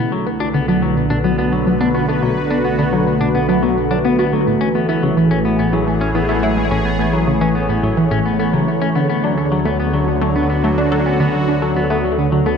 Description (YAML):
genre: ambient, sequencer-driven space music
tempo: 107 BPM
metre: 4/4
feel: straight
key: B dorian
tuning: A4 = 440 Hz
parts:
  - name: sweeping resonant pad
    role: sustained chords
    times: 0.0-12.6 s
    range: D3 to C#5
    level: -17 LUFS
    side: equal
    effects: chorus
  - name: semi-hollow electric guitar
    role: arpeggios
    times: 0.0-12.6 s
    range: F#3 to D4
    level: -22 LUFS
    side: moving between left 6 dB and equal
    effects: auto-pan, ping-pong delay
  - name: tight sequenced synth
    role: riff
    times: 0.0-12.5 s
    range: A2 to A4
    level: -19 LUFS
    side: equal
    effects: chorus, ping-pong delay
  - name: analog drone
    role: bass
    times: 0.4-12.6 s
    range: A1 to D2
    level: -25 LUFS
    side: equal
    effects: chorus
room: wet plate reverb, RT60 3.5 s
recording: dark, warm production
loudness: -14 LUFS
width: side -6 dB against mid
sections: 0.0-12.6 A section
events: none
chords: 0.0 Bm7; 4.5 Amaj7; 9.0 Dmaj7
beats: 0.54 1.10 1.67 | 2.23 2.79 3.35 3.91 | 4.47 5.03 5.59 6.15 | 6.71 7.27 7.83 8.39 | 8.96 9.52 10.08 10.64 | 11.20 11.76 12.32